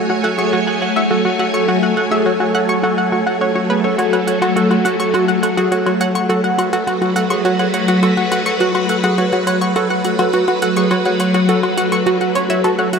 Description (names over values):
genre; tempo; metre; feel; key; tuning
ambient, sequencer-driven space music; 104 BPM; 4/4; straight; F# minor; A4 = 439 Hz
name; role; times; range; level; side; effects
phased string machine; sustained chords; 0.0-13.0 s; F#3 to G#5; -16 LUFS; equal; ensemble chorus, phaser
mellow electric guitar; arpeggios; 0.0-13.0 s; F#4 to G#5; -21 LUFS; right 2 dB; auto-pan, tape echo
analog pluck; riff; 0.0-13.0 s; F#4 to C#6; -19 LUFS; equal; chorus, tape echo
electronic hi-hat and woodblock; percussion; 4.0-13.0 s; none; -29 LUFS; left 4 dB; tape echo
room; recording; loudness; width
wet huge ambient reverb, RT60 7.9 s; in a vast, echoing space; -13 LUFS; side -6 dB against mid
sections
0.0-13.0 A section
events
none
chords
0.0 F#madd9